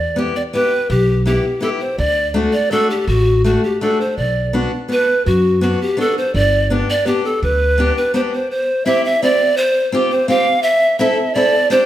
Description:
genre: alpine folk, alpine dance band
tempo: 166 BPM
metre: 3/4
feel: straight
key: G major, C major from 8.5 s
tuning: A4 = 438 Hz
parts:
  - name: breathy reedy pan flute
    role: melody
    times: 0.0-11.9 s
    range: F#4 to F5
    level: -16 LUFS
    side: equal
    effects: none
  - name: upright bass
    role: bass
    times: 0.0-7.9 s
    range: G1 to F#2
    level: -18 LUFS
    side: equal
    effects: none
  - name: fingerpicked steel-string acoustic guitar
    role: accompaniment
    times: 0.2-11.9 s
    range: A3 to A4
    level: -19 LUFS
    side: left 1 dB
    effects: none
room: moderate recital hall reverb, RT60 1.4 s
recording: none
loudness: -14 LUFS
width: side -12 dB against mid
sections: 0.0-8.5 A section; 8.5-11.9 B section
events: none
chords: 0.0 Em; 2.0 D; 4.2 Bm; 6.3 G; 8.5 C; 9.6 Fsus2; 10.7 Am

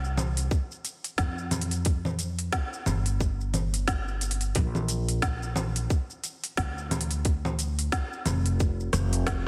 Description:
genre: organic downtempo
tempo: 89 BPM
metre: 4/4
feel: swing 59% on 16ths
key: unclear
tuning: A4 = 440 Hz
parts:
  - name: upright bass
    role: bass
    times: 0.0-9.5 s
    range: F1 to F2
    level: -31 LUFS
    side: equal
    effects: sidechain pumping
  - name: organic electronic drum kit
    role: drums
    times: 0.0-9.4 s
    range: congas, hi-hat, rim click, shaker, snare drum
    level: -33 LUFS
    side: equal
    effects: studio reverb, soft clipping on snare
  - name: electronic kick drum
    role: drums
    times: 0.5-9.4 s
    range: none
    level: -29 LUFS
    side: equal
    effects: studio reverb
room: light reverb, digital ambience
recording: dense, heavily limited modern master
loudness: -28 LUFS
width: mono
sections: 0.0-9.5 A section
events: drum fill 8.9-9.5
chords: none

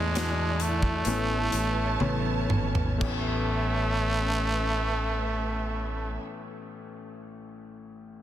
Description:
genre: pop ballad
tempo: 58-69 BPM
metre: 4/4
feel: straight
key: A major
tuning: A4 = 440 Hz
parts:
  - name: growling trumpet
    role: melody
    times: 0.0-6.2 s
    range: G#3 to A3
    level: -30 LUFS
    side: right 2 dB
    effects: tape echo
  - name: clear grand piano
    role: accompaniment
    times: 0.0-8.2 s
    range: A1 to F#4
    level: -34 LUFS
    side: left 4 dB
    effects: none
  - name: warm studio string section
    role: sustained chords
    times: 0.0-6.2 s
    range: C#4 to A5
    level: -35 LUFS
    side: right 3 dB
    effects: none
  - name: fingered electric bass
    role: bass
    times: 0.0-6.2 s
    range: G#1 to E2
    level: -30 LUFS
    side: equal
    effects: none
  - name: modern studio drum kit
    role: drums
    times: 0.2-3.2 s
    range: crash cymbal, hi-hat, kick drum, snare drum, toms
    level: -31 LUFS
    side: right 1 dB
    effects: none
room: light reverb, small room ambience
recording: dense, heavily limited modern master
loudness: -25 LUFS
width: side -12 dB against mid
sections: 0.0-3.0 A section; 3.0-7.2 B section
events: slowing down 0.0-3.0; drum fill 2.0-3.0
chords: 0.0 Dsus2; 1.1 Aadd9

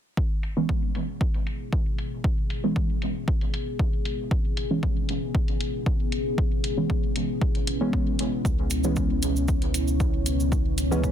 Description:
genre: dub techno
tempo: 116 BPM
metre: 4/4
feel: straight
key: C# minor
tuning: A4 = 440 Hz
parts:
  - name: deep dark ambient pad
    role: sustained chords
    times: 1.1-11.1 s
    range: B3 to C#5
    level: -30 LUFS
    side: left 1 dB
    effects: chorus, built-in reverb, sidechain pumping
  - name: electronic kick drum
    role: drums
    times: 0.2-11.1 s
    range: none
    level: -26 LUFS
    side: equal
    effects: none
  - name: electronic hi-hat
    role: drums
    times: 0.4-10.9 s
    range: none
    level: -36 LUFS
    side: left 1 dB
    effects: overdrive, low-pass filter on hats, low-pass filter on room
  - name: deep mellow chord stab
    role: stabs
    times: 0.6-11.1 s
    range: E3 to C#4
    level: -29 LUFS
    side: right 1 dB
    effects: chorus, phaser, dub echo
  - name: soft dub sub bass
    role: bass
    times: 8.4-11.1 s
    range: C#2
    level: -27 LUFS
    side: equal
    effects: sidechain pumping
  - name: cabasa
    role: percussion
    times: 8.5-11.1 s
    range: none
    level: -36 LUFS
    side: right 5 dB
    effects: none
room: little or no reverb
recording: dense, heavily limited modern master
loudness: -23 LUFS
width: side -10 dB against mid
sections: 0.2-11.1 A section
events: filter sweep on synth stab 0.2-11.1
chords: 0.2 C#m7

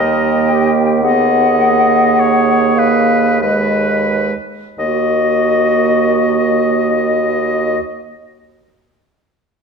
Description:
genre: classical, slow romantic movement for wind quintet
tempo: 42-59 BPM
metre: 3/4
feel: rubato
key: Eb minor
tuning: A4 = 441 Hz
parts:
  - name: mellow hollow silver concert flute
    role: melody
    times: 0.0-7.8 s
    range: Eb5 to G5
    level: -16 LUFS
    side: left 8 dB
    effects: none
  - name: bright oboe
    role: second line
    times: 0.0-7.8 s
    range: Cb5 to Eb5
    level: -20 LUFS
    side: left 2 dB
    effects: none
  - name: bright clarinet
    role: accompaniment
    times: 0.0-7.8 s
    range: Gb4 to Cb5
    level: -19 LUFS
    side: right 8 dB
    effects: none
  - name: dark French horn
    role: accompaniment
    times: 0.0-7.8 s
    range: Ab3 to Cb4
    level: -18 LUFS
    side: right 9 dB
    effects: none
  - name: warm bassoon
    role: bass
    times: 0.0-7.8 s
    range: Eb2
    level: -18 LUFS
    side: right 1 dB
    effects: none
room: wet recital hall reverb, RT60 1.4 s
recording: dark, warm production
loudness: -11 LUFS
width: side -5 dB against mid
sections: 0.0-4.8 A section; 4.8-8.6 B section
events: slowing down 0.0-4.8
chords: 0.0 Eb; 1.0 Abm/Eb; 4.8 Ebm

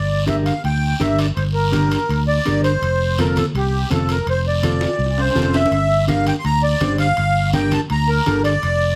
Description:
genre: latin, cumbia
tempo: 165 BPM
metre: 4/4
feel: straight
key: unclear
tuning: A4 = 441 Hz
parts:
  - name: accordion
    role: melody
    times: 0.0-9.0 s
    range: G4 to C6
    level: -23 LUFS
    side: equal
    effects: light tremolo tuning
  - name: fingered electric bass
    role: bass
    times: 0.0-9.0 s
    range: F1 to D2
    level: -22 LUFS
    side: equal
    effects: none
  - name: mellow electric guitar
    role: accompaniment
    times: 0.3-8.5 s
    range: C4 to C5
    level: -25 LUFS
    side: equal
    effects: none
  - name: congas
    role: percussion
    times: 0.3-8.4 s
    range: none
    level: -28 LUFS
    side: equal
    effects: none
  - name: guiro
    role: percussion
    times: 0.3-9.0 s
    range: none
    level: -34 LUFS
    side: equal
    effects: none
  - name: timbales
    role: percussion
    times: 0.3-8.8 s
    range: none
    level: -30 LUFS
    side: equal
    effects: none
room: moderate studio reverb, RT60 0.6 s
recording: none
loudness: -18 LUFS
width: mono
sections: 0.0-9.0 A section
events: drum fill 4.8-5.7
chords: 0.0 Gm; 2.8 F; 5.7 Gm

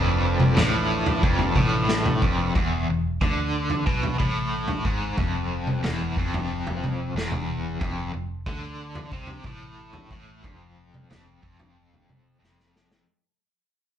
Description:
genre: psychedelic rock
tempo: 91 BPM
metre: 4/4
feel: straight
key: unclear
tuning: A4 = 440 Hz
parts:
  - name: combo organ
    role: sustained chords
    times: 0.0-2.5 s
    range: F3 to B4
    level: -30 LUFS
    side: right 4 dB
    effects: none
  - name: cranked stack guitar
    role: riff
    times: 0.0-13.0 s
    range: E2 to D3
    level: -26 LUFS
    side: equal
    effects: overdrive, tremolo
  - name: fingered electric bass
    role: bass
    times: 0.0-13.0 s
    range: E1 to D2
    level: -30 LUFS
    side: equal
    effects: none
  - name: vintage drum kit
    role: drums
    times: 0.4-13.1 s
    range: kick drum, snare drum, toms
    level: -26 LUFS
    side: equal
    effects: none
room: light reverb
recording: band playing live in one room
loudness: -22 LUFS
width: side -10 dB against mid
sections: 0.0-13.1 A section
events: fade-out 0.4-13.1; drum fill 12.4-13.1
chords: 0.0 F6; 2.5 N.C.; 7.8 F6

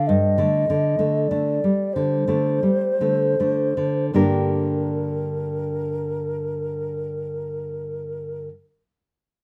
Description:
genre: romantic duo for flute and classical guitar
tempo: 26-34 BPM (dotted quarters)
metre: 6/8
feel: rubato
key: G minor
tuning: A4 = 440 Hz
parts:
  - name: mellow hollow concert flute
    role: melody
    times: 0.0-8.5 s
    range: Bb4 to Eb5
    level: -26 LUFS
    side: equal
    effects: none
  - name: nylon-string guitar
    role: accompaniment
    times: 0.0-8.5 s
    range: G2 to Bb4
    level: -25 LUFS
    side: equal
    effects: none
room: wet studio reverb, RT60 0.6 s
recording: rough home demo mix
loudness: -23 LUFS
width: mono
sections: 0.0-4.1 A section; 4.1-8.3 B section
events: slowing down 0.0-4.1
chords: 0.1 D5/G; 4.1 Gm

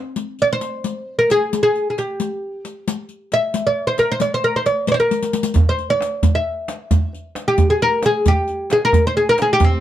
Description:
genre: Persian modal ensemble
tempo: 89 BPM (dotted quarters)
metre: 6/8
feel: straight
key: C dastgah homayun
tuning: A4 = 441 Hz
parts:
  - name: riq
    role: percussion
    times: 0.2-9.7 s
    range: none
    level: -25 LUFS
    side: left 7 dB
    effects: none
  - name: oud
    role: melody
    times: 0.4-9.8 s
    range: C4 to E5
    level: -17 LUFS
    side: equal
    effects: none
  - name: tombak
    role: percussion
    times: 5.6-9.7 s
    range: none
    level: -17 LUFS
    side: right 2 dB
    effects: none
room: light reverb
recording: dark, warm production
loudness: -16 LUFS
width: side -12 dB against mid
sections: 0.2-9.8 A section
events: drum fill 5.1-5.6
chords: none

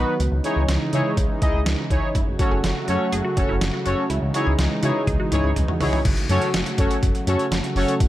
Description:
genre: synth-pop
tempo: 123 BPM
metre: 4/4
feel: straight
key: F# dorian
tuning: A4 = 440 Hz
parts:
  - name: analog synth brass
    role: accompaniment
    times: 0.0-7.9 s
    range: B3 to D#5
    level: -24 LUFS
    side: left 1 dB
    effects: chorus
  - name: warm analog pad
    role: sustained chords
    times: 0.0-8.1 s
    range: C#3 to F#4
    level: -26 LUFS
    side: right 1 dB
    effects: chorus
  - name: chorused synth bass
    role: bass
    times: 0.0-8.1 s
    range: F#1 to C#3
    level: -23 LUFS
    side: equal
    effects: none
  - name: boom bap sampler-style drum kit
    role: drums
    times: 0.2-8.1 s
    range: crash cymbal, hi-hat, kick drum, snare drum, toms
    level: -24 LUFS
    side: equal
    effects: overdrive, gated reverb
  - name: resonant blip pluck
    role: arpeggios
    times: 2.1-6.0 s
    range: E4 to G#4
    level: -32 LUFS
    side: equal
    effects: phaser, analog delay
room: light reverb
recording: none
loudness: -19 LUFS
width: side -14 dB against mid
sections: 0.0-6.1 A section; 6.1-8.1 B section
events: drum fill 5.1-6.1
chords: 0.2 C#madd9; 2.1 F#m; 4.1 C#madd9; 6.1 F#m

